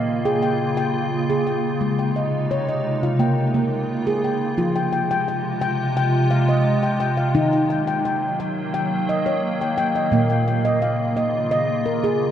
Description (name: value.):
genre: world meditative, meditative tuned percussion.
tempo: 87 BPM.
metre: 4/4.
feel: straight.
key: unclear.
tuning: A4 = 440 Hz.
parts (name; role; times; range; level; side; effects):
evolving wavetable pad; sustained chords; 0.0-12.3 s; C3 to F4; -23 LUFS; equal; ensemble chorus, built-in reverb.
handpan; arpeggios; 0.0-12.3 s; Bb2 to G5; -21 LUFS; equal; none.
room: wet cathedral reverb, RT60 6.1 s.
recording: in a vast, echoing space, nothing above 10.7 kHz.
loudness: -19 LUFS.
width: side -10 dB against mid.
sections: 0.0-4.6 A section; 4.6-12.3 B section.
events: none.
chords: 0.0 Bbm; 1.8 Ab; 3.2 Bbm; 4.6 Fm; 7.3 Ebm; 10.1 Bbm.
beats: 0.42 1.11 | 1.80 2.50 3.19 3.88 | 4.57 5.27 5.96 6.65 | 7.34 8.04 8.73 9.42 | 10.12 10.81 11.51 12.20.